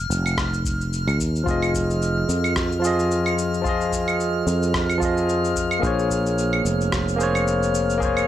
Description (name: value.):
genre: sunset chillout.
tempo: 110 BPM.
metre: 4/4.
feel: swing 56% on 16ths.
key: unclear.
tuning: A4 = 443 Hz.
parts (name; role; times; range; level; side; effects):
sustaining fretless electric bass; bass; 0.0-8.3 s; F1 to F2; -24 LUFS; equal; none.
drifting glass-harmonics texture; texture; 0.0-8.3 s; F6; -30 LUFS; right 1 dB; chorus, built-in reverb.
electronic shaker, claves and rim click; drums; 0.1-8.3 s; none; -28 LUFS; right 1 dB; none.
electronic kick drum; drums; 0.4-8.1 s; none; -30 LUFS; equal; none.
barky tine electric piano; accompaniment; 1.4-8.3 s; F3 to Eb5; -22 LUFS; moving between left 5 dB and right 4 dB; overdrive, auto-pan, tape echo.
room: digital ambience.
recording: dry, gritty hardware recording.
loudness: -19 LUFS.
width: side -11 dB against mid.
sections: 0.0-8.3 A section.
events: none.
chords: 0.0 N.C.; 1.5 Fm7; 5.8 Bbm9.